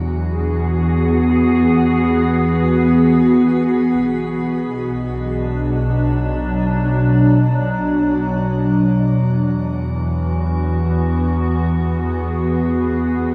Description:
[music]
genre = ambient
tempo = free time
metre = none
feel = none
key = unclear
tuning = A4 = 440 Hz
[part]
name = glassy FM pad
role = sustained chords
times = 0.0-13.3 s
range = B2 to G#4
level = -18 LUFS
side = equal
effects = ensemble chorus, built-in reverb, shimmer reverb
[part]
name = clear studio double bass section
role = bass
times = 0.0-13.3 s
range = B1 to E2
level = -25 LUFS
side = equal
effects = none
[sound]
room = wet lush hall reverb, RT60 2.7 s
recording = none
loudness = -17 LUFS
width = mono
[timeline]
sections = 0.0-13.3 A section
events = none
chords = 0.0 E7; 4.0 Bm; 9.2 E7

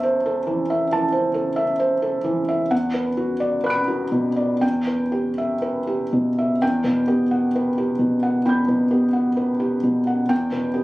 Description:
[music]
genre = neoclassical minimalist piano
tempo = 59-68 BPM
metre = 4/4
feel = rubato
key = E minor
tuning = A4 = 440 Hz
[part]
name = felt-muted upright piano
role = solo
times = 0.0-10.8 s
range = E2 to D7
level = -19 LUFS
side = equal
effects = none
[sound]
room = light reverb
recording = recorded on a phone in the room, studio ambience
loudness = -19 LUFS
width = side -18 dB against mid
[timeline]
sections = 0.0-6.6 A section; 6.6-10.8 B section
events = none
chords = 0.0 Am/E; 2.7 Bm/E; 4.6 Em; 6.6 Emadd9; 10.3 G/E

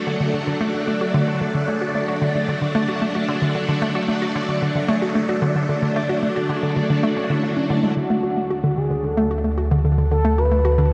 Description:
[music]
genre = ambient, sequencer-driven space music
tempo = 112 BPM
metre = 4/4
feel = straight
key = D lydian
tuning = A4 = 440 Hz
[part]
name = phased string machine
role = sustained chords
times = 0.0-10.9 s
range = F#3 to F#5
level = -27 LUFS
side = equal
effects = ensemble chorus, phaser
[part]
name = concert harp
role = arpeggios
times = 0.0-10.5 s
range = A3 to D5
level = -32 LUFS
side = equal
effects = delay
[part]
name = hollow square pluck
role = riff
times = 0.0-10.9 s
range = D3 to F#4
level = -24 LUFS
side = equal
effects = chorus, delay
[part]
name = expressive synth lead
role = melody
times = 8.0-10.9 s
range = F#4 to B4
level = -26 LUFS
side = equal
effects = chorus, delay
[part]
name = warm sub bass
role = bass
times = 8.0-10.9 s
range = D2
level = -23 LUFS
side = equal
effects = none
[sound]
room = wet cathedral reverb, RT60 6.3 s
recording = in a vast, echoing space, cassette tape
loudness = -21 LUFS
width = mono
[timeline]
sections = 0.0-8.0 A section; 8.0-10.9 A section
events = none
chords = 0.0 D

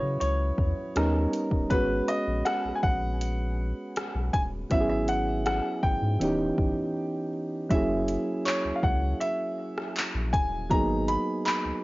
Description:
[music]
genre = contemporary R&B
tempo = 80 BPM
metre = 4/4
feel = straight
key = G# minor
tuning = A4 = 440 Hz
[part]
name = clear baby grand piano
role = melody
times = 0.0-11.8 s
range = B4 to B5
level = -30 LUFS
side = equal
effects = cassette tape, tape echo
[part]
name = soft electric-piano-like synth keys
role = accompaniment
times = 0.0-11.8 s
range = E3 to B4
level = -29 LUFS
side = right 1 dB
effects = chorus, cassette tape
[part]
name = warm sub bass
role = bass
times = 0.0-11.7 s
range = D#1 to C#3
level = -30 LUFS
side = equal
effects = none
[part]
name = smooth R&B drum kit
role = drums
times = 0.2-11.6 s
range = handclaps, hi-hat, kick drum, rim click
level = -30 LUFS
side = equal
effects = cassette tape
[sound]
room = little or no reverb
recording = home recording on cassette, nothing above 7.4 kHz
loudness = -25 LUFS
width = side -20 dB against mid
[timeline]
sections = 0.0-7.7 A section; 7.7-11.8 B section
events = break 7.0-7.7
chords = 0.0 C#m7; 1.0 D#7b13; 1.7 G#m11; 4.7 E69/G#; 6.2 D#7b9b13; 7.7 F#9; 10.7 G#m9

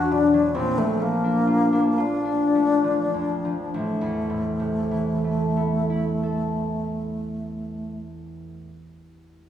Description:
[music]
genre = classical, impressionist duo for alto flute and harp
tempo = 32-48 BPM (dotted quarters)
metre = 6/8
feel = rubato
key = A minor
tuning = A4 = 437 Hz
[part]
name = alto flute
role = melody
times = 0.0-8.0 s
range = A3 to F#4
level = -23 LUFS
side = left 2 dB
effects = none
[part]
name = concert harp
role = accompaniment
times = 0.0-8.8 s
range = E1 to A4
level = -25 LUFS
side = equal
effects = none
[sound]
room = wet scoring stage reverb, RT60 1.6 s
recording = studio reverb, faint mains hum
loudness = -21 LUFS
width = side -10 dB against mid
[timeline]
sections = 0.0-3.8 A section; 3.8-7.2 B section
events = slowing down 0.0-3.8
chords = 0.0 E7sus2; 0.5 Bbmaj7; 3.8 Amadd9

